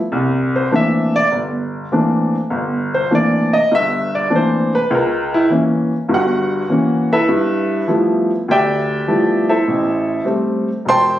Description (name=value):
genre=solo jazz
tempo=101 BPM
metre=4/4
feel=swing 67% on 8ths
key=unclear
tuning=A4 = 440 Hz
part: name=warm upright piano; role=solo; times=0.1-11.2 s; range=E1 to C6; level=-14 LUFS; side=equal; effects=none
room=moderate small room reverb, RT60 0.6 s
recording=recorded on a phone in the room, studio reverb, compression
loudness=-14 LUFS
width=side -12 dB against mid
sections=0.0-11.2 A section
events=upright piano solo 0.0-11.2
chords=0.1 C13; 4.9 C#dim7; 7.3 G13; 9.7 Am7